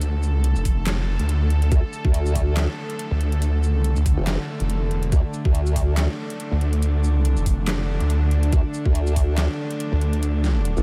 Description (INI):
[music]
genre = heavy wobble dubstep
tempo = 141 BPM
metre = 4/4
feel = swing 55% on 16ths, half-time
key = D minor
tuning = A4 = 440 Hz
[part]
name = warm studio string section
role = sustained chords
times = 0.0-10.8 s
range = D3 to A4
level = -32 LUFS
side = equal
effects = sidechain pumping
[part]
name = snarling distorted saw bass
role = bass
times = 0.0-10.8 s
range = E1 to D2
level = -22 LUFS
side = equal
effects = overdrive
[part]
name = dubstep drum kit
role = drums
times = 0.0-10.8 s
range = handclaps, hi-hat, shaker, snare drum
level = -34 LUFS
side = equal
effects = none
[part]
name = electronic kick drum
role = drums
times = 0.7-9.3 s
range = none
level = -22 LUFS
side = equal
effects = none
[part]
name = formant-sweep wobble bass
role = bass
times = 1.7-10.8 s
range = F1 to D2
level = -23 LUFS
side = equal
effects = chorus, overdrive
[sound]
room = light reverb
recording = none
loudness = -22 LUFS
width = mono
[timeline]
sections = 0.0-10.8 A section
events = none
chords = 0.0 D5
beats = | 0.01 0.44 0.87 1.29 | 1.72 2.14 2.57 2.99 | 3.42 3.84 4.27 4.70 | 5.12 5.55 5.97 6.40 | 6.82 7.25 7.67 8.10 | 8.53 8.95 9.38 9.80 | 10.23 10.65